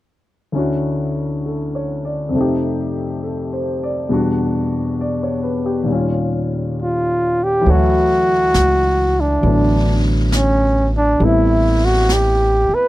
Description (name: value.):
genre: jazz ballad.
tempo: 68 BPM.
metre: 4/4.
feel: swing 69% on 8ths.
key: D major.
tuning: A4 = 440 Hz.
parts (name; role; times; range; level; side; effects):
warm grand piano; accompaniment; 0.5-12.9 s; D2 to D5; -19 LUFS; left 2 dB; none.
mellow flugelhorn; melody; 6.8-12.9 s; C#4 to B4; -16 LUFS; equal; none.
jazz brush drum kit; drums; 7.6-12.9 s; brushed snare drum, hi-hat, snare drum; -28 LUFS; equal; none.
upright bass; bass; 7.7-12.7 s; A1 to D2; -17 LUFS; right 1 dB; none.
room: little or no reverb.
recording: dry, close 1970s-style studio recording.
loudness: -15 LUFS.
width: side -16 dB against mid.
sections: 0.5-7.6 A section; 7.6-12.9 B section.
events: none.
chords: 0.5 Dmaj7; 2.3 F9; 4.1 Em9; 5.9 Eb9; 7.6 Dmaj9; 11.2 Am7.